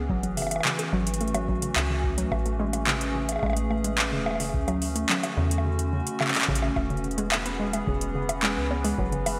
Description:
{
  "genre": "IDM",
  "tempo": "108 BPM",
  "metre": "4/4",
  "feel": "straight",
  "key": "E major",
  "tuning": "A4 = 440 Hz",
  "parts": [
    { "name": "warbly tape-like pad", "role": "sustained chords", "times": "0.0-9.4 s", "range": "D3 to G#4", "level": "-34 LUFS", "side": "equal", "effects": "chorus, built-in reverb" },
    { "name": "warbly dusty pluck", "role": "arpeggios", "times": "0.0-9.2 s", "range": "C#3 to B3", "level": "-34 LUFS", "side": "equal", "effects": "chorus, digital delay" },
    { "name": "metallic FM bass", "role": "bass", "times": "0.0-9.4 s", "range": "E1 to E2", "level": "-32 LUFS", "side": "equal", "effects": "none" },
    { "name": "electronic kick drum", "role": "drums", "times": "0.1-9.1 s", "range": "none", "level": "-34 LUFS", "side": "equal", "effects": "overdrive" },
    { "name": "electro analog drum machine", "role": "drums", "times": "0.2-9.4 s", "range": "bongos, handclaps, hi-hat", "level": "-30 LUFS", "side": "equal", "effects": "overdrive, gated reverb, digital delay" },
    { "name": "bubbling stepped-filter texture", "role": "texture", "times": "6.8-9.4 s", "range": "B4", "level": "-39 LUFS", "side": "equal", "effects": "chorus, built-in reverb" }
  ],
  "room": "moderate lush hall reverb, RT60 2.0 s, digital ambience",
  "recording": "bright 1980s-style digital production",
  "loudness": "-26 LUFS",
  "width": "mono",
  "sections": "0.0-9.4 A section",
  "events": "none",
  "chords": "0.1 F#m7; 2.3 Amaj7; 4.5 Dmaj7; 6.8 E6",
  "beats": "| 0.10 0.65 1.21 1.76 | 2.32 2.87 3.43 3.98 | 4.54 5.09 5.65 6.21 | 6.76 7.32 7.87 8.43 | 8.98"
}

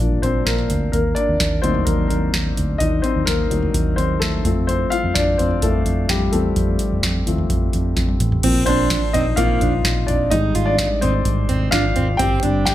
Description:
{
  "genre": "piano-driven pop",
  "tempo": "128 BPM",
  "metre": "4/4",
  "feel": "straight",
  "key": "Bb mixolydian from 8.4 s",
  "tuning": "A4 = 439 Hz",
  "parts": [
    { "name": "dark upright piano", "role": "accompaniment", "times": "0.0-12.7 s", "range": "F3 to G5", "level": "-20 LUFS", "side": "left 3 dB", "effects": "none" },
    { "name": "vintage muted fingered electric bass", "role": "bass", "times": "0.0-12.7 s", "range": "G1 to F2", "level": "-23 LUFS", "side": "equal", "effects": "none" },
    { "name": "booming analog drum machine", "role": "drums", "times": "0.2-12.7 s", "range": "crash cymbal, hi-hat, kick drum, snare drum, toms", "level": "-21 LUFS", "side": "right 1 dB", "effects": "none" },
    { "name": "fingerpicked plugged-in steel-string acoustic guitar", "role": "riff", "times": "8.4-12.7 s", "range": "Bb3 to F4", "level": "-23 LUFS", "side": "right 7 dB", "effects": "none" }
  ],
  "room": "light reverb",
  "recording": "none",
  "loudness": "-16 LUFS",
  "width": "side -13 dB against mid",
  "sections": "0.0-8.4 A section; 8.4-12.7 B section",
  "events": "upright piano solo 0.0-8.4, 8.4-12.7; drum fill 8.0-8.4",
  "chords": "0.0 Bb; 0.9 Ebm; 4.5 F; 8.4 Bbsus2; 10.3 Fm7/Ab; 12.2 Csus2/G",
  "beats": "0.00 0.47 | 0.93 1.40 1.87 2.34 | 2.81 3.28 3.75 4.22 | 4.69 5.16 5.63 6.09 | 6.56 7.03 7.50 7.97 | 8.44 8.91 9.38 9.85 | 10.32 10.79 11.26 11.73 | 12.20 12.66"
}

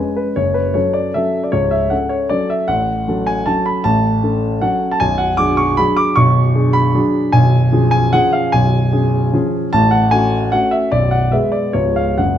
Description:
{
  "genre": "classical, piano waltz",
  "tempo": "136-164 BPM",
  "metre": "3/4",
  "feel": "rubato",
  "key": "F# minor",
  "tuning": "A4 = 441 Hz",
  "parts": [
    { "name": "warm grand piano", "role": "solo", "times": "0.0-12.4 s", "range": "B0 to D6", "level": "-13 LUFS", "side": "equal", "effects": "none" }
  ],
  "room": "moderate recital hall reverb, RT60 1.7 s",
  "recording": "none",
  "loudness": "-13 LUFS",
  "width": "side -10 dB against mid",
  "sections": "0.0-12.4 A section",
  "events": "none",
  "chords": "0.4 F#m; 2.7 F#m/A; 5.0 G#m7b5/B; 7.3 C#7/B; 9.7 F#m/A; 10.9 Bm6; 11.7 C#7",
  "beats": "| 0.37 0.75 1.15 | 1.54 1.92 2.31 | 2.71 3.08 3.48 | 3.85 4.23 4.62 | 5.01 5.39 5.78 | 6.17 6.55 6.95 | 7.34 7.73 8.14 | 8.54 8.93 9.33 | 9.73 10.12 10.52 | 10.93 11.32 11.75 | 12.19"
}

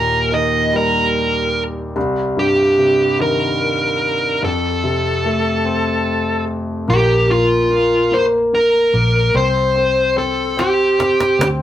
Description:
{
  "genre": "six-eight pop ballad",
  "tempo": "49 BPM (dotted quarters)",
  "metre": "6/8",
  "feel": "straight",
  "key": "unclear",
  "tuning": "A4 = 440 Hz",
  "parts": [
    { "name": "dark smooth lead guitar", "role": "melody", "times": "0.0-11.5 s", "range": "F4 to Eb5", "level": "-16 LUFS", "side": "equal", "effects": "overdrive" },
    { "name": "warm concert grand piano", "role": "accompaniment", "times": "0.0-11.6 s", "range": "C2 to C4", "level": "-18 LUFS", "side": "left 1 dB", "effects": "none" },
    { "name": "vintage muted fingered electric bass", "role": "bass", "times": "6.9-11.6 s", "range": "Bb1 to D2", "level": "-20 LUFS", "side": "equal", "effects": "none" },
    { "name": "cajon", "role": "drums", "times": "10.6-11.6 s", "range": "none", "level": "-22 LUFS", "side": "equal", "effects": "none" }
  ],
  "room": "wet studio reverb, RT60 0.5 s",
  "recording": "rough rehearsal-room recording",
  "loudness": "-14 LUFS",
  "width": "side -12 dB against mid",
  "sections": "0.0-6.9 A section; 6.9-11.6 B section",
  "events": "drum fill 10.6-11.6",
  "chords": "0.0 Eb; 2.0 Cm; 4.4 F; 6.9 Bb5; 9.3 C5",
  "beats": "0.73 | 1.96 3.19 | 4.42 5.65 | 6.88 8.11 | 9.34 10.57"
}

